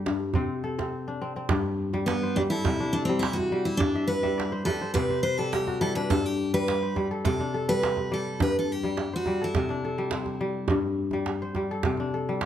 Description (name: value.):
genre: west african traditional, West African string and xylophone music.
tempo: 104 BPM.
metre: 4/4.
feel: straight.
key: G major.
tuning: A4 = 435 Hz.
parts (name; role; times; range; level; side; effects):
kora; arpeggios; 0.0-12.5 s; G2 to F#5; -28 LUFS; left 2 dB; none.
djembe; percussion; 0.1-12.5 s; none; -30 LUFS; right 4 dB; none.
picked steel-string acoustic guitar; melody; 2.1-10.8 s; B3 to C5; -28 LUFS; right 1 dB; none.
room: light reverb.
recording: close, detailed microphones.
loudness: -25 LUFS.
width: side -10 dB against mid.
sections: 0.0-1.5 A section; 1.5-12.5 B section.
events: steel-string acoustic guitar solo 1.5-12.5; kora fill 3.8-6.1.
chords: 0.3 Amadd11/C; 1.5 Gadd11; 2.6 C5; 3.8 N.C.; 4.9 C5; 6.1 G; 7.2 C5; 8.4 Gmaj7sus2; 9.5 C; 10.7 Gsus24; 11.8 C5.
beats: 0.34 0.92 | 1.50 2.07 2.65 3.22 | 3.80 4.37 4.95 5.52 | 6.10 6.67 7.25 7.82 | 8.40 8.97 9.55 10.12 | 10.70 11.27 11.85 12.42.